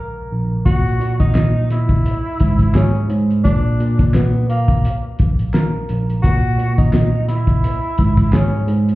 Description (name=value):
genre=hip hop, boom-bap hip-hop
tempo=86 BPM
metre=4/4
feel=swing 55% on 16ths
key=unclear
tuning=A4 = 441 Hz
part: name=tine electric piano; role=accompaniment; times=0.0-8.9 s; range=A#1 to A#4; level=-17 LUFS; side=right 1 dB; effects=cassette tape
part: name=breathy tenor saxophone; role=melody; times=0.7-8.6 s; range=A#3 to F#4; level=-25 LUFS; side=equal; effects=ping-pong delay
part: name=cloth-damped thuddy drum kit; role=drums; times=0.7-8.9 s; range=handclaps, hi-hat, kick drum, snare drum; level=-17 LUFS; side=equal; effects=none
room=small room ambience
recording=heard muffled through a wall, club reverb, EQ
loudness=-14 LUFS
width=side -18 dB against mid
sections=0.7-8.9 A section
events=break 0.0-0.7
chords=none